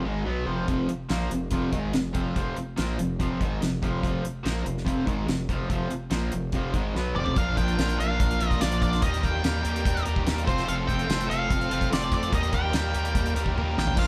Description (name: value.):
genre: classic rock.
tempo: 144 BPM.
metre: 4/4.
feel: straight.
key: unclear.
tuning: A4 = 440 Hz.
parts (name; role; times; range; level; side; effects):
crunchy overdriven guitar; riff; 0.0-14.1 s; F2 to Bb4; -31 LUFS; equal; none.
gritty driven synth bass; bass; 0.0-14.1 s; F1 to F2; -32 LUFS; equal; none.
damped 70s drum kit; drums; 0.7-14.1 s; crash cymbal, hi-hat, kick drum, snare drum, toms; -31 LUFS; equal; none.
octave-fuzz lead guitar; melody; 7.2-14.1 s; C5 to G5; -32 LUFS; equal; distortion.
room: moderate large studio reverb, RT60 1.1 s.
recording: band playing live in one room.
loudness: -26 LUFS.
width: mono.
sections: 0.0-7.4 A section; 7.4-14.1 B section.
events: drum fill 6.9-7.4, 13.6-14.0.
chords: 0.0 F5; 7.4 Bb; 9.0 Eb; 10.5 Fadd9; 12.3 Eb.